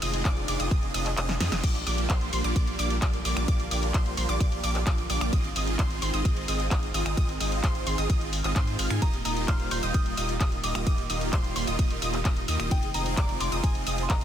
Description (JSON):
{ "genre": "EDM, festival progressive house", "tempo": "130 BPM", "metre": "4/4", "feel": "straight", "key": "unclear", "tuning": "A4 = 438 Hz", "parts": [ { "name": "supersaw pad", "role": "sustained chords", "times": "0.0-14.2 s", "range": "D3 to F4", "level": "-38 LUFS", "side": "right 1 dB", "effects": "sidechain pumping" }, { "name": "wide unison pluck", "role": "arpeggios", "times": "0.0-14.2 s", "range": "C6 to Ab6", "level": "-34 LUFS", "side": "right 1 dB", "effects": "sidechain pumping, tape echo" }, { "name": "supersaw chords", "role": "riff", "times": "0.0-14.2 s", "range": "Bb3 to Ab5", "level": "-32 LUFS", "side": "right 1 dB", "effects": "phaser, wide subtle chorus, sidechain pumping, tape echo" }, { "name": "saturated sub bass", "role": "bass", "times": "0.0-14.2 s", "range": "Eb1 to Ab2", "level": "-31 LUFS", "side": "equal", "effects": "tube saturation, sidechain pumping" }, { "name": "house drum kit", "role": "drums", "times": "0.0-14.2 s", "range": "crash cymbal, finger snaps, handclaps, hi-hat, ride cymbal, snare drum", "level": "-33 LUFS", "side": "left 1 dB", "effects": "none" }, { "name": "electronic kick drum", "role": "drums", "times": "0.3-14.2 s", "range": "none", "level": "-25 LUFS", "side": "equal", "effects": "none" }, { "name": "soft synth bell", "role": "melody", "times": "9.0-14.2 s", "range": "G5 to G6", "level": "-35 LUFS", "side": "left 1 dB", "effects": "chorus, tape echo" } ], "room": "little or no reverb", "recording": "dense, heavily limited modern master", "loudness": "-24 LUFS", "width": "side -10 dB against mid", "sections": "0.0-1.6 A section; 1.6-14.2 A section", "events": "drop 0.0-1.6, 1.6-14.2; kick drops out 1.2-1.6; drum fill 1.3-1.6", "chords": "0.0 Fm7; 1.6 Bb6; 5.3 Ab6; 9.0 Ebadd9; 12.7 Fm7" }